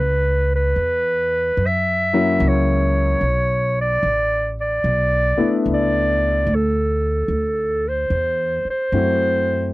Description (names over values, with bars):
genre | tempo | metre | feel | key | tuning
jazz ballad | 74 BPM | 4/4 | swing 66% on 8ths | D major | A4 = 441 Hz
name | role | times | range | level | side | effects
breathy clarinet | melody | 0.0-9.7 s | A4 to E5 | -19 LUFS | right 1 dB | none
upright bass | bass | 0.0-9.7 s | A1 to F#2 | -22 LUFS | equal | none
warm concert grand piano | accompaniment | 2.1-9.7 s | F#3 to F#4 | -20 LUFS | left 3 dB | none
room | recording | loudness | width
little or no reverb | dry, close 1970s-style studio recording | -17 LUFS | side -19 dB against mid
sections
0.0-9.7 A section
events
clarinet solo 0.0-9.7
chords
0.0 C#m7; 1.6 F#7; 3.2 Bm11; 6.5 D9